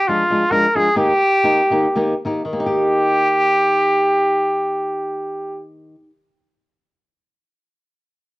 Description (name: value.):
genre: mexican folk, mariachi.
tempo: 102-140 BPM.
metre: 3/4.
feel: swing 54% on 8ths.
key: Eb major.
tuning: A4 = 440 Hz.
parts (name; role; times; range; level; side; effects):
warm trumpet; melody; 0.0-5.6 s; F4 to Bb4; -16 LUFS; equal; cassette tape.
flamenco guitar; accompaniment; 0.1-6.2 s; Eb3 to G4; -23 LUFS; left 1 dB; cassette tape, plate reverb.
room: wet studio reverb, RT60 0.5 s.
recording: home recording on cassette.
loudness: -15 LUFS.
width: side -19 dB against mid.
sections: 0.0-2.5 A section; 2.5-6.0 B section.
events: slowing down 0.0-2.5.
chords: 0.0 Bb7; 1.0 Eb.